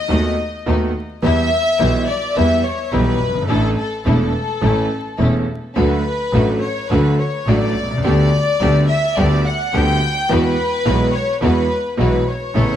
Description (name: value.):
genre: tango.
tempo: 106 BPM.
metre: 4/4.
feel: rubato.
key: unclear.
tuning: A4 = 435 Hz.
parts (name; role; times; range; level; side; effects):
warm studio violin section; second line; 0.0-12.8 s; A4 to G5; -20 LUFS; left 3 dB; tape echo.
clear concert grand piano; accompaniment; 0.1-12.8 s; E1 to A4; -18 LUFS; right 1 dB; none.
dark chamber string section; stabs; 0.1-12.8 s; G3 to A4; -26 LUFS; left 1 dB; none.
clear double bass; bass; 0.1-12.8 s; E1 to E2; -20 LUFS; equal; none.
room: moderate large studio reverb, RT60 1.2 s.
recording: vinyl crackle.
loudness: -15 LUFS.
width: side -10 dB against mid.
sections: 0.0-12.8 A section.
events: violin section solo 0.0-12.8.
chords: 0.0 B7/D#; 1.2 Em; 3.5 Asus4; 4.6 A; 5.8 D; 8.0 G/D; 10.3 Eadd9.